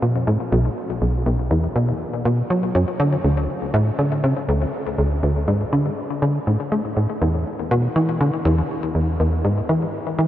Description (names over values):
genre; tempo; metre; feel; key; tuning
ambient; 121 BPM; 4/4; straight; D lydian; A4 = 435 Hz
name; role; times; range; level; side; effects
tight sequencer bass; solo; 0.0-10.3 s; B1 to A3; -18 LUFS; equal; lush chorus, ping-pong delay
room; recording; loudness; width
wet huge ambient reverb, RT60 9.7 s; worn, warbling old tape, cassette tape, warbly pitch drift; -18 LUFS; side -12 dB against mid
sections
0.0-10.3 A section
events
none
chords
none